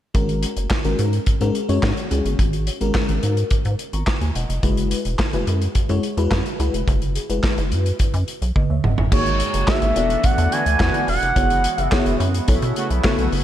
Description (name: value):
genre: early-eighties boogie funk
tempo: 107 BPM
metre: 4/4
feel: straight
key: G# minor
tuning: A4 = 439 Hz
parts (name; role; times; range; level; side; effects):
- FM electric piano with soft pad layer; accompaniment; 0.1-13.3 s; G#3 to C#6; -25 LUFS; left 3 dB; chorus, slapback echo
- rubbery square bass; bass; 0.1-13.4 s; E1 to B2; -21 LUFS; equal; none
- modern studio drum kit; drums; 0.1-13.4 s; crash cymbal, handclaps, hi-hat, kick drum, snare drum, toms; -22 LUFS; equal; none
- expressive portamento lead; melody; 9.1-12.2 s; C#5 to G#5; -22 LUFS; right 2 dB; chorus, slapback echo
- chorused pulse-width pad; sustained chords; 9.1-13.4 s; C#3 to F#4; -29 LUFS; right 3 dB; none
- analog synth brass; second line; 10.5-13.3 s; C#3 to F#4; -28 LUFS; right 2 dB; chorus, slapback echo
room: light reverb, studio reverb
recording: none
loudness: -17 LUFS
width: side -12 dB against mid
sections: 0.1-9.1 A section; 9.1-13.4 B section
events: drum fill 8.6-9.1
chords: 0.1 G#9sus4; 4.6 F#9sus4; 9.1 G#9sus4; 10.0 E9sus4; 11.4 F#9sus4; 12.5 B9sus4